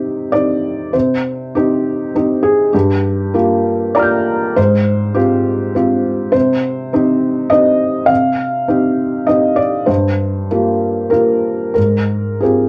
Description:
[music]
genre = neoclassical minimalist piano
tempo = 100 BPM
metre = 3/4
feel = rubato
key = C minor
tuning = A4 = 437 Hz
[part]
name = felt-muted upright piano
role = solo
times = 0.0-12.7 s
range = G2 to G6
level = -15 LUFS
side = equal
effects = none
[sound]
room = light reverb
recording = worn, warbling old tape, cassette tape, warbly pitch drift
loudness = -15 LUFS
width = mono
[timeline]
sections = 0.0-12.7 A section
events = none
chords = 0.0 Cm; 2.7 Gm7; 4.6 Fmadd9/Ab; 6.3 Cm; 9.9 Gm7; 11.8 Fmadd9/Ab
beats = 0.34 | 0.94 1.55 2.15 | 2.73 3.33 3.96 | 4.57 5.17 5.76 | 6.34 6.93 7.52 | 8.10 8.69 9.28 | 9.89 10.50 11.12 | 11.76 12.42

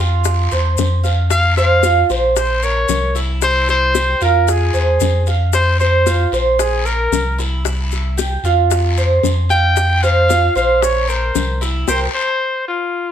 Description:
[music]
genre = latin, Cuban son and guajira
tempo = 114 BPM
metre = 4/4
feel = straight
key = F harmonic minor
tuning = A4 = 440 Hz
[part]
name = Cuban tres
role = arpeggios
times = 0.0-12.1 s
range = E4 to F5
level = -18 LUFS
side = right 4 dB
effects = none
[part]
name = pure sine sub bass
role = bass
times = 0.0-12.1 s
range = Bb1 to F2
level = -17 LUFS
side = equal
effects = none
[part]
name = maracas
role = percussion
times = 0.2-12.0 s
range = none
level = -28 LUFS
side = left 9 dB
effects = none
[part]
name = bongos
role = percussion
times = 0.3-12.0 s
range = none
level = -24 LUFS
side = left 11 dB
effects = none
[part]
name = guiro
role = percussion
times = 0.3-12.0 s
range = none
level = -28 LUFS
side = left 4 dB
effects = none
[part]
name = warm trumpet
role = melody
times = 1.3-13.1 s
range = F4 to G5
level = -17 LUFS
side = left 2 dB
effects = none
[sound]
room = light reverb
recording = none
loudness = -13 LUFS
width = side -9 dB against mid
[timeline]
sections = 0.0-13.1 A section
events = band accent 11.9-13.1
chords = 0.3 F5; 2.4 Bbmadd9; 3.4 C; 4.5 Fm; 6.6 Bbsus2; 7.6 C; 8.7 F5; 10.8 Bbsus2; 11.9 C5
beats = 0.25 0.78 | 1.31 1.84 2.37 2.89 | 3.42 3.95 4.48 5.01 | 5.53 6.06 6.59 7.12 | 7.65 8.18 8.71 9.23 | 9.76 10.29 10.82 11.35 | 11.88 12.41 12.94

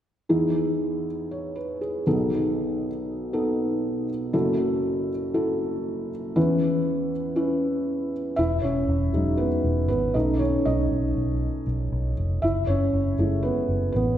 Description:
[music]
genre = pop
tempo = 119 BPM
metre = 4/4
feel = straight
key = E major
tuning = A4 = 440 Hz
[part]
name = felt-muted upright piano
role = accompaniment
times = 0.3-14.2 s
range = F#1 to E5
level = -23 LUFS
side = equal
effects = none
[part]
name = vintage muted fingered electric bass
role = bass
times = 8.4-14.2 s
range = E1 to B1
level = -25 LUFS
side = equal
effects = none
[sound]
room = wet concert hall reverb, RT60 1.9 s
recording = recorded in a church or concert hall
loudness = -22 LUFS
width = side -10 dB against mid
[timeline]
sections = 0.3-8.4 A section; 8.4-14.2 B section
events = felt piano solo 8.4-14.2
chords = 0.3 Emaj7; 2.1 B7; 4.3 F#m7; 6.4 C#m7/E; 8.4 Emaj7; 10.2 B7; 12.4 F#m7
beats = | 0.29 0.80 1.30 1.81 | 2.31 2.82 3.33 3.83 | 4.34 4.84 5.35 5.85 | 6.36 6.87 7.37 7.88 | 8.38 8.89 9.39 9.90 | 10.40 10.91 11.41 11.92 | 12.43 12.93 13.44 13.94

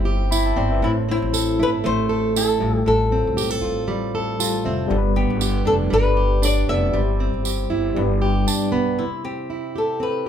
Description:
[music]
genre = acoustic pop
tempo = 118 BPM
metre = 4/4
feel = swing 55% on 16ths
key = C major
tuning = A4 = 440 Hz
[part]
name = flamenco guitar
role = melody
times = 0.0-10.3 s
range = E4 to E5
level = -22 LUFS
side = left 2 dB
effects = none
[part]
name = fingerpicked plugged-in steel-string acoustic guitar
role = accompaniment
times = 0.0-10.3 s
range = G2 to A4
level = -23 LUFS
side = right 3 dB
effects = none
[part]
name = overdriven reed electric piano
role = accompaniment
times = 0.0-9.0 s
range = G3 to B5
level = -28 LUFS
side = left 5 dB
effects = fast tremolo
[part]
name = upright bass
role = bass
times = 0.0-9.0 s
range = F1 to B1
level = -23 LUFS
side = equal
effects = none
[part]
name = tambourine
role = percussion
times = 0.3-8.6 s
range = none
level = -27 LUFS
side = right 7 dB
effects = none
[sound]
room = light reverb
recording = band playing live in one room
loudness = -18 LUFS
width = side -9 dB against mid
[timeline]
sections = 0.0-9.0 A section; 9.0-10.3 B section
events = reed electric piano fill 4.1-4.9, 8.0-9.0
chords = 0.0 C/G; 0.8 Am; 2.6 Fadd9/A; 4.9 G; 6.9 C/G; 8.0 G; 9.0 C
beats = 0.33 | 0.83 1.34 1.85 2.36 | 2.87 3.38 3.89 4.40 | 4.91 5.42 5.93 6.43 | 6.95 7.45 7.96 8.47 | 8.98 9.49 10.00

